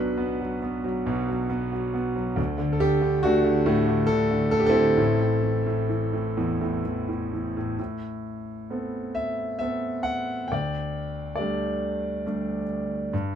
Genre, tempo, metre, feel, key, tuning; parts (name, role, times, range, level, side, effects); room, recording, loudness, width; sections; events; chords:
classical, lyrical solo piano; 63-70 BPM; 3/4; rubato; A dorian; A4 = 439 Hz
clear concert grand piano; solo; 0.0-13.4 s; A1 to G5; -23 LUFS; equal
light reverb; dark, warm production; -23 LUFS; side -8 dB against mid
0.0-7.8 A section; 7.8-13.4 B section
0.0 Bm; 2.4 D; 5.0 Am; 7.8 Amadd9; 10.5 Dsus4